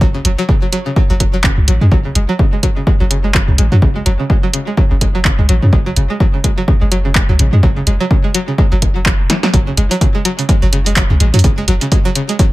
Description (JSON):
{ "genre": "minimal techno", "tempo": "126 BPM", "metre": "4/4", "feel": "swing 57% on 16ths", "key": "F# minor", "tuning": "A4 = 437 Hz", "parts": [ { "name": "string-like resonator pluck", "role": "riff", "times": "0.0-12.5 s", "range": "C#3 to G#3", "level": "-19 LUFS", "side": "equal", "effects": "chorus, sidechain pumping, tape echo" }, { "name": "punchy sub bass", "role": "bass", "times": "0.0-11.8 s", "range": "E1 to F#2", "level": "-13 LUFS", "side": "equal", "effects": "sidechain pumping" }, { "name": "electronic kick drum", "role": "drums", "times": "0.0-12.5 s", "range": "none", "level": "-13 LUFS", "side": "equal", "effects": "none" }, { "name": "punchy analog drum machine", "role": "drums", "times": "0.2-12.5 s", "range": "handclaps, hi-hat, snare drum", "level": "-17 LUFS", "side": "right 1 dB", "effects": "none" } ], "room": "little or no reverb", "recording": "echo-heavy mix", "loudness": "-11 LUFS", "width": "side -18 dB against mid", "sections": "0.0-9.5 A section; 9.5-12.5 B section", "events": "drum fill 9.3; drop 9.5-12.5", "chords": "0.0 F#5" }